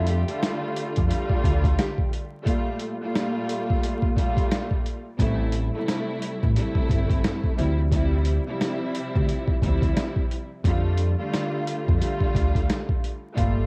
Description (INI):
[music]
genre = hip hop, boom-bap hip-hop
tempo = 88 BPM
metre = 4/4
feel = swing 60% on 16ths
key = G dorian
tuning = A4 = 441 Hz
[part]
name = flamenco guitar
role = melody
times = 0.0-2.1 s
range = G4 to G5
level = -36 LUFS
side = equal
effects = high-pass filter, low-pass filter, cassette tape, analog delay
[part]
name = warm studio string section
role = accompaniment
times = 0.0-13.7 s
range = Bb2 to F4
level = -30 LUFS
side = equal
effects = cassette tape, high-pass filter, low-pass filter
[part]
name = upright bass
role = bass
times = 0.0-13.7 s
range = G1 to F2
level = -26 LUFS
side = equal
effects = none
[part]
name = boom bap sampler-style drum kit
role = drums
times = 0.1-13.6 s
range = hi-hat, kick drum, snare drum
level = -27 LUFS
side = equal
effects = none
[sound]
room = small room ambience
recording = home recording on cassette, vinyl crackle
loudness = -25 LUFS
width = mono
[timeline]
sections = 0.0-2.5 A section; 2.5-13.7 B section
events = none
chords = 0.0 F69; 2.5 Gm9; 5.2 Am7; 7.6 Dm11; 10.6 F69